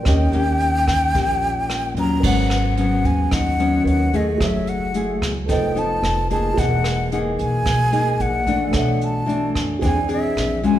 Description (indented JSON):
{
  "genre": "bossa nova",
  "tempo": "110 BPM",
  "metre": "4/4",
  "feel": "straight",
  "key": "G# minor",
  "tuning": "A4 = 438 Hz",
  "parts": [
    { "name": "breathy concert flute", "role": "melody", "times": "0.0-10.8 s", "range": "D#5 to Bb5", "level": "-23 LUFS", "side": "left 1 dB", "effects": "none" },
    { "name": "dark grand piano", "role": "accompaniment", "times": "0.0-10.8 s", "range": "C4 to G5", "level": "-30 LUFS", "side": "right 6 dB", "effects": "none" },
    { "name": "nylon-string guitar", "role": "accompaniment", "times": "0.0-10.8 s", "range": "G#2 to A4", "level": "-22 LUFS", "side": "left 2 dB", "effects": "none" },
    { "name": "upright bass", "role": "bass", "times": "0.0-10.8 s", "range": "E1 to F#2", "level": "-23 LUFS", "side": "equal", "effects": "none" },
    { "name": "vintage brush drum kit", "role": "drums", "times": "0.1-10.8 s", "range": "crash cymbal, hi-hat, kick drum, rim click", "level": "-26 LUFS", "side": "right 1 dB", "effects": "none" }
  ],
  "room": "wet recital hall reverb, RT60 1.5 s",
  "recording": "recorded in a church or concert hall",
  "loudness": "-17 LUFS",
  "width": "side -12 dB against mid",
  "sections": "0.0-2.2 A section; 2.2-10.8 B section",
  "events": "none",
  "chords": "0.1 Eb7; 2.2 G#m11; 4.4 F#m9; 5.5 F7#11; 6.6 Emaj9#11; 8.7 Bm11; 9.8 E7alt"
}